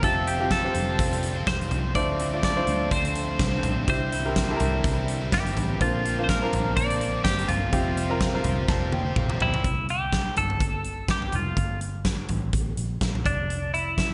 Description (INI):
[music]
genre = piano-driven pop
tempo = 125 BPM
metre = 4/4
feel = swing 56% on 16ths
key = F major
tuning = A4 = 437 Hz
[part]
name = twelve-string electric guitar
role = melody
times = 0.0-14.1 s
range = D4 to D5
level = -31 LUFS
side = equal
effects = spring reverb
[part]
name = clear baby grand piano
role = accompaniment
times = 0.0-9.7 s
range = G2 to C6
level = -32 LUFS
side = equal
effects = none
[part]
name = clear studio string section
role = sustained chords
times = 0.0-9.6 s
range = C3 to F4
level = -40 LUFS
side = equal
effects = none
[part]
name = crunchy overdriven guitar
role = riff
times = 0.0-9.7 s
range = Bb2 to C5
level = -36 LUFS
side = equal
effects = none
[part]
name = vintage muted fingered electric bass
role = bass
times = 0.0-14.1 s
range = E1 to D2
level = -32 LUFS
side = equal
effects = none
[part]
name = huge arena drum kit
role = drums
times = 0.0-14.1 s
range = hi-hat, kick drum, snare drum, toms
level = -30 LUFS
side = equal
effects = none
[sound]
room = light reverb, small room ambience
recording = nothing above 10.9 kHz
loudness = -25 LUFS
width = mono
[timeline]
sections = 0.0-9.6 A section; 9.6-14.1 B section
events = grand piano fill 8.2-9.6; drum fill 8.7-9.6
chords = 0.0 Fsus2; 2.0 Dm7; 3.9 C; 5.8 Bbadd9; 7.7 Fsus2; 9.6 C5; 11.6 Gm; 13.3 N.C.